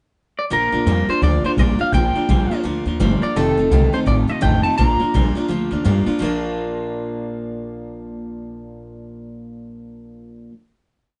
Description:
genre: rock.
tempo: 169 BPM.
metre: 4/4.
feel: swing 62% on 8ths.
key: Bb major.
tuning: A4 = 441 Hz.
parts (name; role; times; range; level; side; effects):
electric guitar through a small old amp; melody; 0.4-5.4 s; A4 to Bb5; -23 LUFS; equal; none.
picked steel-string acoustic guitar; accompaniment; 0.5-10.6 s; F2 to F4; -27 LUFS; equal; none.
electric guitar through a small old amp; riff; 0.5-10.5 s; F2 to D4; -28 LUFS; equal; none.
upright bass; bass; 0.5-10.5 s; F1 to G2; -22 LUFS; equal; none.
room: light reverb.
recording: band playing live in one room, nothing above 10.6 kHz.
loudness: -19 LUFS.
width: mono.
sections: 0.0-0.5 pickup bar; 0.5-6.2 A section; 6.2-9.0 final chord.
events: none.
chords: 0.0 N.C.; 0.5 Bb; 3.4 F7; 4.8 Bb.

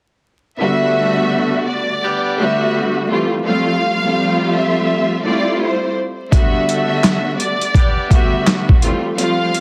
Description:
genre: hip hop, boom-bap hip-hop.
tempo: 84 BPM.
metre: 4/4.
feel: swing 62% on 16ths.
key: G major.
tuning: A4 = 440 Hz.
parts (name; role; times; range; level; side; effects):
rich studio violin section; melody; 0.6-9.6 s; C5 to F5; -22 LUFS; equal; high-pass filter, low-pass filter, digital delay.
warm studio string section; accompaniment; 0.6-9.6 s; D3 to F#4; -20 LUFS; equal; high-pass filter, low-pass filter.
clear horn section; stabs; 0.8-8.7 s; G3 to B4; -28 LUFS; equal; high-pass filter, low-pass filter, digital delay.
boom bap sampler-style drum kit; drums; 6.3-9.6 s; handclaps, hi-hat, kick drum, snare drum; -16 LUFS; equal; none.
room: light reverb.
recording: dense, heavily limited modern master, vinyl crackle.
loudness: -16 LUFS.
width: mono.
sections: 0.6-9.6 A section.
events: kick muted 9.2-9.6.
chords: 0.6 Gmaj9; 3.1 Fmaj9; 6.3 Gmaj9; 8.8 Fmaj9.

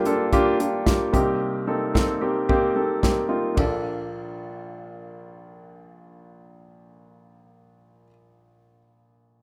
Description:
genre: piano-driven pop.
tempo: 111 BPM.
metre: 4/4.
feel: swing 56% on 16ths.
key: Bb major.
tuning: A4 = 440 Hz.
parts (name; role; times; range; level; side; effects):
clear baby grand piano; accompaniment; 0.0-9.4 s; G1 to A4; -25 LUFS; equal; none.
natural country drum kit; drums; 0.1-3.7 s; hi-hat, kick drum, ride cymbal, snare drum, toms; -26 LUFS; equal; none.
room: wet studio reverb, RT60 0.5 s.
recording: rough home demo mix.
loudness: -23 LUFS.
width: mono.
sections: 0.0-3.6 A section; 3.6-7.9 B section.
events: none.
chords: 0.0 Gm7; 1.1 Cm7; 3.6 Bbmaj7.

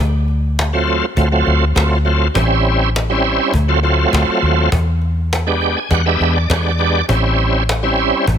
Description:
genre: straight-eighth soul blues.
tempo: 101 BPM.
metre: 4/4.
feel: straight.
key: unclear.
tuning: A4 = 439 Hz.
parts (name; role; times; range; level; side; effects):
vintage muted fingered electric bass; bass; 0.0-8.4 s; A1 to E2; -16 LUFS; left 1 dB; none.
cajon; drums; 0.3-8.4 s; none; -22 LUFS; left 1 dB; none.
bright tonewheel organ; accompaniment; 0.7-8.3 s; F#3 to G#5; -16 LUFS; right 2 dB; slow rotary speaker, overdrive, chorus vibrato.
room: light reverb, small room ambience.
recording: none.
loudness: -13 LUFS.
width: side -8 dB against mid.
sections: 0.0-7.1 A section; 7.1-8.4 A section.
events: tonewheel organ fill 5.3-7.1.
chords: 0.0 D7#9; 2.4 A7#9; 3.5 D7#9; 4.7 E7#9; 7.1 A7#9.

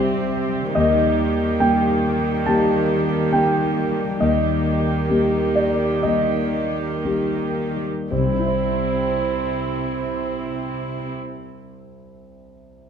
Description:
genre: cinematic, emotional film score for orchestra.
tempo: 54-74 BPM.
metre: 4/4.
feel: rubato.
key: unclear.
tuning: A4 = 440 Hz.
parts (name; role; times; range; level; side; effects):
dark concert grand piano; accompaniment; 0.0-12.9 s; C2 to A5; -21 LUFS; left 1 dB; none.
warm studio viola section; accompaniment; 0.0-11.1 s; Bb3 to G4; -25 LUFS; right 4 dB; none.
concert harp; arpeggios; 0.0-12.0 s; C3 to C5; -28 LUFS; left 7 dB; none.
warm studio cello section; bass; 0.0-11.1 s; C3 to Eb3; -27 LUFS; right 4 dB; none.
room: moderate scoring stage reverb, RT60 1.9 s.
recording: dark, warm production.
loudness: -18 LUFS.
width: side -7 dB against mid.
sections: 0.0-8.1 A section; 8.1-12.2 B section.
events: slowing down 0.0-8.1.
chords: 0.0 C; 0.7 Eb; 8.1 C.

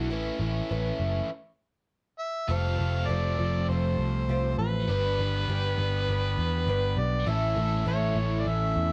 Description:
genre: folk rock and heartland rock.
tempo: 100 BPM.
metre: 4/4.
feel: straight.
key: unclear.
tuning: A4 = 440 Hz.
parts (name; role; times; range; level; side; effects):
picked twelve-string acoustic guitar; accompaniment; 0.0-8.9 s; A2 to C5; -36 LUFS; equal; none.
biting overdriven guitar; riff; 0.0-8.9 s; A2 to B4; -37 LUFS; equal; none.
picked electric bass; bass; 0.0-8.9 s; F1 to E2; -30 LUFS; equal; none.
overdriven harmonica; melody; 2.2-8.9 s; B4 to F5; -34 LUFS; equal; none.
tonewheel organ; sustained chords; 2.5-8.9 s; C#4 to B4; -47 LUFS; equal; none.
room: light reverb.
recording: dark, warm production.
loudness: -28 LUFS.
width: mono.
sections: 0.0-2.5 A section; 2.5-8.9 B section.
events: stop 1.3-2.5.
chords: 0.1 Aadd9; 2.5 Fadd9; 4.9 G; 7.3 A.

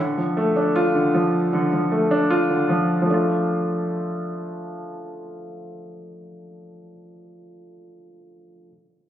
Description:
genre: hip hop.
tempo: 155 BPM.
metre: 4/4.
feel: half-time.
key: D minor.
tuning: A4 = 440 Hz.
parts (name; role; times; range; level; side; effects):
dark concert grand piano; accompaniment; 0.0-8.7 s; D3 to F4; -20 LUFS; equal; none.
room: little or no reverb.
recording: recorded on a phone in the room, club reverb, compression, low-pass filter.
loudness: -19 LUFS.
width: side -11 dB against mid.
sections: 0.0-3.1 A section; 3.1-6.2 B section.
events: filter sweep 0.0-3.1.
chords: 0.0 Dm.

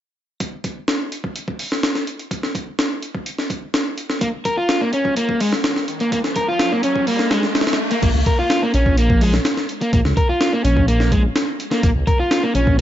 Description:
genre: breakbeat, breaks.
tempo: 126 BPM.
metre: 4/4.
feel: straight.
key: Bb minor pentatonic.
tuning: A4 = 440 Hz.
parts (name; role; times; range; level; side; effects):
breakbeat sampler-style drum kit; drums; 0.4-12.8 s; crash cymbal, hi-hat, kick drum, snare drum; -20 LUFS; equal; high-pass filter on hats, high-pass filter on kick, high-pass filter on snare, high-pass filter on cymbals, high-pass filter on room.
crunchy overdriven guitar; riff; 4.2-12.8 s; Ab3 to Bb4; -19 LUFS; equal; tube saturation, vintage 12-bit sampler grit, tape echo.
riser; sound effects; 5.3-8.0 s; none; -28 LUFS; equal; none.
dark detuned saw bass; bass; 8.0-12.8 s; Bb1 to Db2; -18 LUFS; equal; none.
room: little or no reverb.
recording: nothing above 7.7 kHz.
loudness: -17 LUFS.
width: side -12 dB against mid.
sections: 0.4-8.0 A section; 8.0-12.8 B section.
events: riser 5.3-8.0.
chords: 0.4 Bbm.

